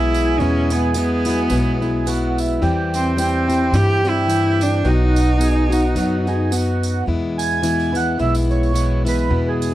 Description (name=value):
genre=acoustic folk duo or small band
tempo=108 BPM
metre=4/4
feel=swing 56% on 8ths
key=E major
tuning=A4 = 441 Hz
part: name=bright cello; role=melody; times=0.0-6.5 s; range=B3 to G4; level=-21 LUFS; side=equal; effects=none
part: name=mellow accordion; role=second line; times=0.0-9.7 s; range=E4 to G#5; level=-24 LUFS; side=right 6 dB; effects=none
part: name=picked plugged-in steel-string acoustic guitar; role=accompaniment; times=0.0-9.7 s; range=E2 to F#4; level=-21 LUFS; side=left 3 dB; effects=none
part: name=upright bass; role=bass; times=0.0-9.7 s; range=B1 to G2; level=-20 LUFS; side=equal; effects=none
part: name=tambourine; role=percussion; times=0.1-9.7 s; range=none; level=-33 LUFS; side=right 7 dB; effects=none
room=small room ambience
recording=dry, close 1970s-style studio recording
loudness=-16 LUFS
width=side -14 dB against mid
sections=0.0-7.1 A section; 7.1-9.7 B section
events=accordion solo 7.1-9.7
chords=0.0 Eadd9; 2.6 C/E; 4.8 B; 7.1 E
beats=| 0.39 0.95 1.51 2.06 | 2.62 3.18 3.73 4.29 | 4.85 5.40 5.96 6.52 | 7.08 7.63 8.19 8.75 | 9.31